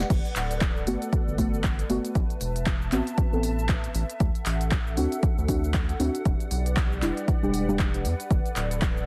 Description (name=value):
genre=deep house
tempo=117 BPM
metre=4/4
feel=swing 58% on 16ths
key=unclear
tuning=A4 = 445 Hz
part: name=hollow soft pad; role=sustained chords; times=0.0-9.1 s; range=G4 to A5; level=-38 LUFS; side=equal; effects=ensemble chorus, sidechain pumping
part: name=deep mellow chord stab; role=stabs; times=0.0-7.8 s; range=G3 to A4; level=-31 LUFS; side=equal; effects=chorus, cassette tape, sidechain pumping, analog delay
part: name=round analog bass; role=bass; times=0.0-9.1 s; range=D1 to E2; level=-31 LUFS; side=equal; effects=tube saturation, sidechain pumping
part: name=deep house drum kit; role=drums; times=0.0-9.1 s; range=cabasa, crash cymbal, handclaps, hi-hat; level=-36 LUFS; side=equal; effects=none
part: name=electronic kick drum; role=drums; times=0.1-8.9 s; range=none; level=-27 LUFS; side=equal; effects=none
room=digital ambience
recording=dense, heavily limited modern master, vinyl crackle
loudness=-26 LUFS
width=mono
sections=0.0-9.1 A section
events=none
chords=0.1 Gmaj9; 2.2 Amadd9; 4.2 D7; 6.3 Em9; 8.3 Gmaj9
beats=| 0.10 0.61 1.13 1.64 | 2.15 2.67 3.18 3.69 | 4.20 4.72 5.23 5.74 | 6.25 6.77 7.28 7.79 | 8.31 8.82